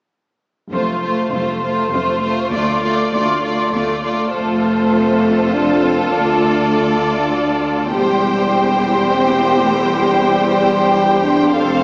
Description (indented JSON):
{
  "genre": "cinematic",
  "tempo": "100 BPM",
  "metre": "3/4",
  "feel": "straight",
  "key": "F major",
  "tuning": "A4 = 441 Hz",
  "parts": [
    { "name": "rich symphonic violin section", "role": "melody", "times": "0.7-11.8 s", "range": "C5 to G5", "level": "-20 LUFS", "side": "equal", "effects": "none" },
    { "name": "clear studio violin section", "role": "second line", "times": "0.7-11.8 s", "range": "F4 to C5", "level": "-20 LUFS", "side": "equal", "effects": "none" },
    { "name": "rich symphonic viola section", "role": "accompaniment", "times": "0.7-11.8 s", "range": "A3 to A4", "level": "-20 LUFS", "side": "equal", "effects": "none" },
    { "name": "rich symphonic cello section", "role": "bass", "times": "0.7-11.8 s", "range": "D2 to F2", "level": "-22 LUFS", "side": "equal", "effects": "none" },
    { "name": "rich symphonic double bass section", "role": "bass", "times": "0.7-11.8 s", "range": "E1 to D2", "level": "-26 LUFS", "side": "equal", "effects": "none" },
    { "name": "mellow French horn section", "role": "sustained chords", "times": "4.3-11.8 s", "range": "G3 to D4", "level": "-17 LUFS", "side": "equal", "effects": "none" }
  ],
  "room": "wet concert hall reverb, RT60 1.9 s",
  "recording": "heard from further back in the room, small speaker sound",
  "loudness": "-13 LUFS",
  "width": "side -37 dB against mid",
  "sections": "0.7-4.3 A section; 4.3-11.8 B section",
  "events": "none",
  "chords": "0.7 F; 2.5 Dm; 4.3 F; 6.1 Dm; 7.9 C/E"
}